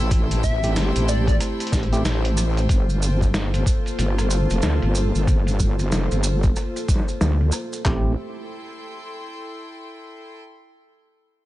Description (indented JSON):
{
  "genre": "glitch hop",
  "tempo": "93 BPM",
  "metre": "4/4",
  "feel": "swing 61% on 16ths",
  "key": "A phrygian",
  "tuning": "A4 = 440 Hz",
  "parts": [
    { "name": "dark analog pad", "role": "sustained chords", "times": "0.0-8.2 s", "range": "A3 to C5", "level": "-30 LUFS", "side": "left 1 dB", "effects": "chorus, sidechain pumping" },
    { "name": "wobble bass", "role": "bass", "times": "0.0-8.2 s", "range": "F1 to D2", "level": "-21 LUFS", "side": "equal", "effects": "chorus" },
    { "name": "bright chamber string section", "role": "texture", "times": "0.0-10.4 s", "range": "Bb3 to C6", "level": "-35 LUFS", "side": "left 1 dB", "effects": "sidechain pumping" },
    { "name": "boom bap sampler-style drum kit", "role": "drums", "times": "0.1-8.0 s", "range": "handclaps, kick drum", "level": "-21 LUFS", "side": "equal", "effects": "small room ambience" },
    { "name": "boom bap sampler-style drum kit", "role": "drums", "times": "0.1-7.8 s", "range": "hi-hat, rim click, snare drum", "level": "-27 LUFS", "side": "equal", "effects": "low-pass filter on hats, small room ambience, low-pass filter on snare, low-pass filter on cymbals" },
    { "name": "maracas", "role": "percussion", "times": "0.1-7.8 s", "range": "none", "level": "-32 LUFS", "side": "right 4 dB", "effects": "none" },
    { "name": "plucky unison lead", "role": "melody", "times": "0.4-1.4 s", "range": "D5 to E5", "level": "-30 LUFS", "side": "left 1 dB", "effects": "tape echo" },
    { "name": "tine electric piano", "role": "stabs", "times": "0.6-2.0, 7.9-8.1 s", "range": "A3 to G4", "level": "-29 LUFS", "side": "right 2 dB", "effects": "overdrive, sidechain pumping, tape echo" }
  ],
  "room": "digital ambience",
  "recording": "nothing above 10.8 kHz",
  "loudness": "-18 LUFS",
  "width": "side -16 dB against mid",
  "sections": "0.0-7.9 A section; 7.9-10.4 B section",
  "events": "fade-out on string section 0.0-7.9; filter sweep on drum 0.0-7.9",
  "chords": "0.0 Am7; 2.7 Gm11; 7.9 Am7"
}